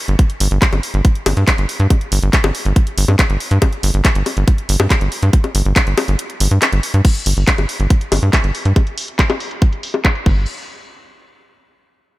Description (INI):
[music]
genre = psychedelic trance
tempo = 140 BPM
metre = 4/4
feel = straight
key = unclear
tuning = A4 = 440 Hz
[part]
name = tight sequencer bass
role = bass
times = 0.1-10.5 s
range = G1 to G2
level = -14 LUFS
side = equal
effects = none
[part]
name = garage drum kit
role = drums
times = 0.1-10.3 s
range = bongos, crash cymbal, handclaps, hi-hat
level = -19 LUFS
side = left 1 dB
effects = low-pass filter on hats, low-pass filter on perc, low-pass filter on snare, low-pass filter on cymbals
[part]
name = electronic kick drum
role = drums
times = 0.2-10.3 s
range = none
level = -13 LUFS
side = equal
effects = none
[sound]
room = little or no reverb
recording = none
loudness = -13 LUFS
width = side -18 dB against mid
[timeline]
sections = 0.0-7.0 A section; 7.0-10.5 B section; 10.5-12.2 C section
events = drop 0.0-7.0; kick drops out 6.2-7.0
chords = none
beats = | 0.19 0.62 1.05 1.48 | 1.90 2.33 2.76 3.19 | 3.62 4.05 4.48 4.90 | 5.33 5.76 6.19 6.62 | 7.05 7.48 7.90 8.33 | 8.76 9.19 9.62 10.05